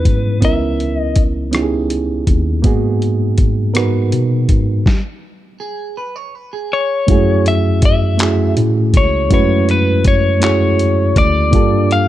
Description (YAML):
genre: slow six-eight R&B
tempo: 54 BPM (dotted quarters)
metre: 6/8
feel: straight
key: F# minor from 7.1 s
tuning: A4 = 441 Hz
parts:
  - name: lightly driven lead guitar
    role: melody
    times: 0.0-1.2, 6.7-12.1 s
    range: B4 to F5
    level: -18 LUFS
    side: left 4 dB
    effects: slapback echo
  - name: bright reed electric piano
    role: accompaniment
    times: 0.0-12.1 s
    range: G#3 to B4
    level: -18 LUFS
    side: right 5 dB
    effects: overdrive
  - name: mellow tine electric piano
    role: bass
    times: 0.1-12.1 s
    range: C#2 to B2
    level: -16 LUFS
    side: left 1 dB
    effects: medium stereo tremolo
  - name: dusty soul sampler-style drum kit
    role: drums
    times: 0.1-12.1 s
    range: handclaps, hi-hat, kick drum, rim click, snare drum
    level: -14 LUFS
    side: left 1 dB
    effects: none
  - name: clean electric guitar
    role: second line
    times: 5.6-7.1 s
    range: G#4 to C#5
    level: -26 LUFS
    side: right 5 dB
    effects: wide subtle chorus
room: digital ambience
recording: dark, warm production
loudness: -12 LUFS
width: side -13 dB against mid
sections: 0.0-7.1 A section; 7.1-12.1 B section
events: stop 4.9-7.1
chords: 0.0 C#m9; 2.6 G#m9; 4.9 N.C.; 7.1 F#m9; 11.5 Gm9